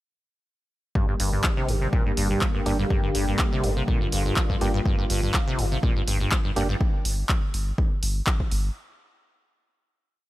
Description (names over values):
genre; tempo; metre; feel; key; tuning
acid house; 123 BPM; 4/4; swing 53% on 16ths; G minor; A4 = 440 Hz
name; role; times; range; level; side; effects
warm analog pad; sustained chords; 1.0-6.8 s; D3 to G4; -31 LUFS; equal; chorus, sidechain pumping
acid bass, saw; riff; 1.0-6.8 s; G2 to F3; -28 LUFS; equal; tube saturation, lush chorus, sidechain pumping
electronic kick drum; drums; 1.0-8.5 s; none; -24 LUFS; equal; overdrive, small room ambience
saturated sub bass; bass; 1.2-8.7 s; G1; -26 LUFS; equal; tube saturation, sidechain pumping
punchy analog drum machine; drums; 1.2-8.6 s; handclaps, hi-hat; -30 LUFS; equal; overdrive, small room ambience
percussive organ stab; stabs; 2.7-6.7 s; Bb3 to G4; -32 LUFS; right 2 dB; chorus, analog delay
room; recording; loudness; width
little or no reverb; none; -22 LUFS; side -16 dB against mid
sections
1.0-8.8 groove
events
none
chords
1.0 Gm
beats
| 0.95 1.44 1.93 2.42 | 2.90 3.39 3.88 4.37 | 4.86 5.34 5.83 6.32 | 6.81 7.29 7.78 8.27